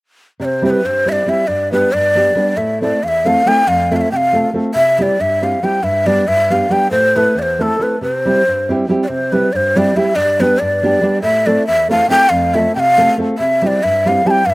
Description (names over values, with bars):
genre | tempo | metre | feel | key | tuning
balkan folk | 277 BPM (eighths) | 5/8 | straight | C major | A4 = 441 Hz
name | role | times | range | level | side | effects
breathy ney | melody | 0.4-14.5 s | A4 to A5 | -13 LUFS | equal | slapback echo
nylon-string guitar | accompaniment | 0.4-14.5 s | E2 to A4 | -17 LUFS | right 1 dB | none
room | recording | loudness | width
little or no reverb | recorded outdoors, with no room sound | -12 LUFS | side -20 dB against mid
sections
0.4-9.1 A section; 9.1-14.5 A section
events
none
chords
0.4 C; 1.5 G; 2.6 Am; 3.7 F; 4.7 C; 5.8 G; 6.9 Am; 8.0 C; 10.1 G; 11.2 Am; 12.3 F; 13.4 C